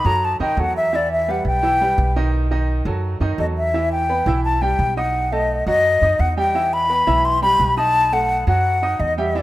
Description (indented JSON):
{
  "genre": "latin, Cuban son and guajira",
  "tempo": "171 BPM",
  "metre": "4/4",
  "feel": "straight",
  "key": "E minor",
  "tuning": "A4 = 440 Hz",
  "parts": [
    { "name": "concert flute", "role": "melody", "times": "0.0-9.4 s", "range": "D5 to C6", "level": "-18 LUFS", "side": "left 1 dB", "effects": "none" },
    { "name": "upright bass", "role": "bass", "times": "0.0-9.4 s", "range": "B1 to F#2", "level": "-22 LUFS", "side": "equal", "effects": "none" },
    { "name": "bright baby grand piano", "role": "arpeggios", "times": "0.1-9.4 s", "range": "D#3 to D#6", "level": "-25 LUFS", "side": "right 4 dB", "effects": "none" }
  ],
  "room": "light reverb, small room reverb",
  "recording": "rough home demo mix",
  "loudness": "-16 LUFS",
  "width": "side -16 dB against mid",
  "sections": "0.0-3.7 A section; 3.7-9.4 B section",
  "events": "flute solo 0.0-3.7",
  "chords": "0.0 B7 (rootless); 0.9 Em; 2.3 B7; 3.7 Em; 5.1 B7; 6.5 Em; 7.9 B7",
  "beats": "0.23 0.58 | 0.93 1.28 1.63 1.98 | 2.33 2.69 3.04 3.39 | 3.74 4.09 4.44 4.79 | 5.14 5.49 5.84 6.20 | 6.54 6.90 7.25 7.60 | 7.95 8.30 8.65 9.00 | 9.35"
}